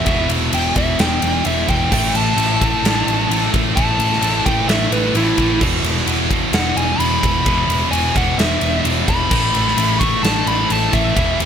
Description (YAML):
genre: hard rock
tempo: 130 BPM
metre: 4/4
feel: straight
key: unclear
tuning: A4 = 440 Hz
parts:
  - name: smooth overdriven lead guitar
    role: melody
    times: 0.0-11.4 s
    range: E4 to C#6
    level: -20 LUFS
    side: equal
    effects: digital delay
  - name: high-gain distorted guitar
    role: riff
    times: 0.0-11.5 s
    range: E2 to A3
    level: -23 LUFS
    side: left 1 dB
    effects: distortion
  - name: scooped high-gain guitar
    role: riff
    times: 0.0-11.5 s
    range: E2 to A3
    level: -24 LUFS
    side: left 12 dB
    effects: distortion
  - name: scooped high-gain guitar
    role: riff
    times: 0.0-11.5 s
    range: E2 to A3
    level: -22 LUFS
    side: right 12 dB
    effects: distortion
  - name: hollow-body short-scale picked electric bass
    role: bass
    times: 0.1-11.5 s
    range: E1 to A1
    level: -22 LUFS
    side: equal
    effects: none
  - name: huge arena drum kit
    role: drums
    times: 0.1-11.5 s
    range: crash cymbal, kick drum, ride cymbal, snare drum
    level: -20 LUFS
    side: equal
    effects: none
room: small room ambience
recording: none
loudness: -14 LUFS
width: side -8 dB against mid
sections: 0.0-11.5 A section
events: lead electric guitar solo 0.0-11.5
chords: 0.0 E5; 1.9 A5; 5.6 E5; 9.3 A5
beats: | 0.07 0.53 0.99 1.45 | 1.92 2.38 2.84 3.30 | 3.76 4.22 4.69 5.15 | 5.61 6.07 6.53 7.00 | 7.46 7.92 8.38 8.84 | 9.30 9.77 10.23 10.69 | 11.15